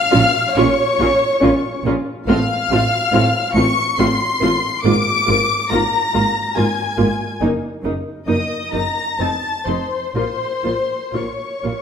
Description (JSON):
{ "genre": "classical, slow romantic movement for string orchestra", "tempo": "60-71 BPM", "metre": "3/4", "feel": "rubato", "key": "Bb minor", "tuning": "A4 = 440 Hz", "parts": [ { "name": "warm studio violin section", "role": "melody", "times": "0.0-11.8 s", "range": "C6 to D7", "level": "-22 LUFS", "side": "left 5 dB", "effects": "none" }, { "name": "rich studio violin section", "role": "second line", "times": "0.0-11.8 s", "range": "C5 to D6", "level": "-20 LUFS", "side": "left 2 dB", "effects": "none" }, { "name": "warm studio viola section", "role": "accompaniment", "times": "0.1-11.7 s", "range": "Bb3 to F4", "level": "-20 LUFS", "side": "equal", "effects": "none" }, { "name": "rich studio cello section", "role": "bass", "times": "0.1-11.7 s", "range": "F2 to Bb2", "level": "-24 LUFS", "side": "right 2 dB", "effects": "none" }, { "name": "rich studio double bass section", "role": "bass", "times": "0.1-11.7 s", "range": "F1 to Bb1", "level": "-25 LUFS", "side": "right 3 dB", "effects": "none" } ], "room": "wet recital hall reverb, RT60 1.4 s", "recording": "none", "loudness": "-15 LUFS", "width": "side -7 dB against mid", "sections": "0.0-11.8 A section", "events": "none", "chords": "0.0 Bbm; 2.3 F/A; 4.8 Bb7/Ab; 7.4 Ebm/Gb; 9.2 F7; 10.2 Bbm", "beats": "0.57 1.42 | 2.27 3.12 3.98 | 4.84 5.71 6.57 | 7.41 8.28 9.19 | 10.15 11.14" }